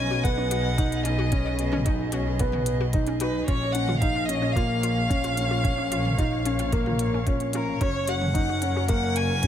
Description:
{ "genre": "piano and strings electronica", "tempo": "111 BPM", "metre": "4/4", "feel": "straight", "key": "unclear", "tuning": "A4 = 440 Hz", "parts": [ { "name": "warm violin", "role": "melody", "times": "0.0-9.5 s", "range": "A#4 to G#5", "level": "-30 LUFS", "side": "equal", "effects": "none" }, { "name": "rich string quartet", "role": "sustained chords", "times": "0.0-9.5 s", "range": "A#2 to F#5", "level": "-34 LUFS", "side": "equal", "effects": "sidechain pumping" }, { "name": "dark concert grand piano", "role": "riff", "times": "0.0-9.5 s", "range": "A#3 to D#4", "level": "-28 LUFS", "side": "equal", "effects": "ping-pong delay" }, { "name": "muted symphonic double bass section", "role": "bass", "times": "0.0-9.5 s", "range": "F#1 to B1", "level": "-28 LUFS", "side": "equal", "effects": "sidechain pumping" }, { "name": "analog pluck", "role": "arpeggios", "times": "0.1-9.5 s", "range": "C#4 to F#4", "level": "-36 LUFS", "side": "left 4 dB", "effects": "chorus, sidechain pumping, ping-pong delay" }, { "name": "electronic kick drum", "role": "drums", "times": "0.2-9.5 s", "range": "none", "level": "-25 LUFS", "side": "equal", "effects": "small room reverb" }, { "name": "organic electronic drum kit", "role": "drums", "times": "0.2-9.5 s", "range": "hi-hat, toms", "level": "-33 LUFS", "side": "right 1 dB", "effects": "small room reverb" } ], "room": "light reverb, small room ambience", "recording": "none", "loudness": "-22 LUFS", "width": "side -10 dB against mid", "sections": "0.0-9.5 A section", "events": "none", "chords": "0.0 B6; 3.5 A#m; 7.8 F#" }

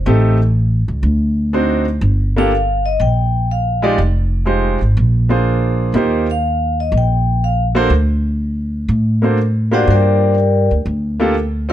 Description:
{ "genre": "jazz, small-group swing and bop", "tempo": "122 BPM", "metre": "4/4", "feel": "swing 69% on 8ths", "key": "unclear", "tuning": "A4 = 441 Hz", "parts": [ { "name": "upright bass", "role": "bass", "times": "0.0-11.7 s", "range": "F1 to A2", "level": "-15 LUFS", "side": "equal", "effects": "none" }, { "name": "clear grand piano", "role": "accompaniment", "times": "0.1-11.7 s", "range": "Ab3 to D5", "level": "-17 LUFS", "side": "right 1 dB", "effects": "none" }, { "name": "vibraphone with medium mallets", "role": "melody", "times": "2.4-11.7 s", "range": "F#4 to G5", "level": "-18 LUFS", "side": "left 4 dB", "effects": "none" } ], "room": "little or no reverb", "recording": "dark, warm production", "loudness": "-13 LUFS", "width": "side -12 dB against mid", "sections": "0.0-11.7 A section", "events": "none", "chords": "0.1 Am7b5; 1.0 D7b9; 2.0 Gm7; 4.0 Fm9; 5.0 Bb7; 6.0 Eb69; 7.9 D7(no3); 9.9 Gm7" }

